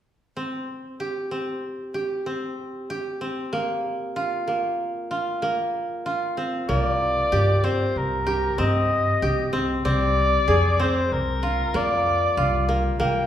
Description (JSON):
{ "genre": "contemporary instrumental, chamber music in an uneven meter", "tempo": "95 BPM", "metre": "5/4", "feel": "straight", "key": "C minor", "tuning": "A4 = 440 Hz", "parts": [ { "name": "koto", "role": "arpeggios", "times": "0.4-13.3 s", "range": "Bb3 to Ab4", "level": "-25 LUFS", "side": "right 1 dB", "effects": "none" }, { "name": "warm soprano saxophone", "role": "melody", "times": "6.7-13.3 s", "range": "Bb4 to G5", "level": "-23 LUFS", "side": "left 2 dB", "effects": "none" }, { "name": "upright bass", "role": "bass", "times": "6.7-13.3 s", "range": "C2 to G2", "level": "-24 LUFS", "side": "equal", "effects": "none" } ], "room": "wet recital hall reverb, RT60 1.5 s", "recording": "recorded in a church or concert hall", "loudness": "-21 LUFS", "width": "side -10 dB against mid", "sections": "0.4-6.7 A section; 6.7-13.3 B section", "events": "none", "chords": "0.4 C5; 3.5 Bbsus2; 6.7 Cm7; 9.8 Bb9/C" }